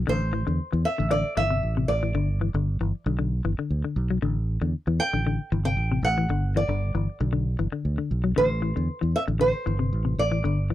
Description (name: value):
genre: afrobeat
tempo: 116 BPM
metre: 4/4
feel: straight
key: A dorian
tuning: A4 = 439 Hz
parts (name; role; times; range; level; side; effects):
- fingered electric bass; bass; 0.0-10.7 s; G1 to E2; -25 LUFS; right 1 dB; none
- nylon-string guitar; melody; 0.1-10.7 s; C5 to G5; -26 LUFS; right 2 dB; none
- semi-hollow electric guitar; arpeggios; 0.1-10.7 s; C3 to F#3; -28 LUFS; left 6 dB; none
room: little or no reverb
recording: dry, close 1970s-style studio recording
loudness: -23 LUFS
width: side -13 dB against mid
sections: 0.0-10.7 A section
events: none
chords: 0.1 Am; 2.1 G; 4.2 Am7; 6.3 G; 8.4 Am